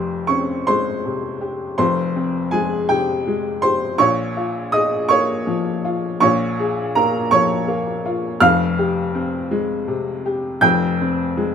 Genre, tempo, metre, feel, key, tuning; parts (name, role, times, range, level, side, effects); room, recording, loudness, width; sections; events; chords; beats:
neoclassical minimalist piano; 54 BPM (dotted quarters); 6/8; rubato; F minor; A4 = 441 Hz
clear upright piano; solo; 0.0-11.5 s; F1 to G6; -17 LUFS; equal
light reverb; minimal, uncompressed stereo recording; -17 LUFS; side -7 dB against mid
0.0-11.5 A section
0.0 Fmadd9; 4.0 Bbm7; 8.4 Fmadd9
0.66 | 1.79 2.89 | 3.99 5.10 | 6.21 7.31 | 8.41 9.51 | 10.63